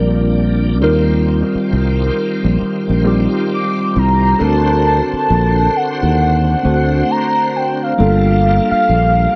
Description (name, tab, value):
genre	R&B, neo-soul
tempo	67 BPM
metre	4/4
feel	swing 60% on 16ths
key	unclear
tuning	A4 = 440 Hz
part	warm velvety synth lead	melody	0.0-9.4 s	D5 to D6	-19 LUFS	equal	chorus, analog delay
part	mellow tine electric piano	accompaniment	0.0-9.4 s	G3 to C5	-20 LUFS	equal	phaser, analog delay
part	bright tonewheel organ	sustained chords	0.0-9.4 s	D3 to C5	-28 LUFS	equal	slow rotary speaker, chorus vibrato
part	sustaining fretless electric bass	bass	0.0-9.3 s	G1 to Eb2	-17 LUFS	equal	subtle chorus
room	light reverb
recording	echo-heavy mix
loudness	-15 LUFS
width	mono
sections	0.0-9.4 A section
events	none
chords	0.0 Bb69; 0.8 Eb69; 4.4 D7b13; 8.0 Gm9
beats	| 0.81 1.71 2.60 3.50 | 4.40 5.29 6.19 7.08 | 7.98 8.87